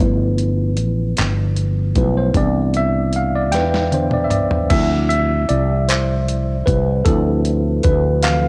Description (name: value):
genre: slow six-eight R&B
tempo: 51 BPM (dotted quarters)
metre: 6/8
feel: straight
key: D dorian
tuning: A4 = 443 Hz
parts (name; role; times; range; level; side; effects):
- tine electric piano; accompaniment; 0.0-8.5 s; E3 to G5; -22 LUFS; equal; overdrive, cassette tape
- fretless electric bass; bass; 0.0-8.5 s; G1 to E2; -20 LUFS; equal; none
- dusty soul sampler-style drum kit; drums; 0.4-8.4 s; crash cymbal, handclaps, hi-hat, kick drum, snare drum, toms; -23 LUFS; equal; overdrive
room: little or no reverb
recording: home recording on cassette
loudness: -18 LUFS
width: mono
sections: 0.0-4.7 A section; 4.7-8.5 B section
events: tine electric piano solo 0.0-4.7, 4.7-8.5; drum fill 3.5-4.7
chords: 0.0 G13; 2.3 Cmaj9; 4.7 Dm7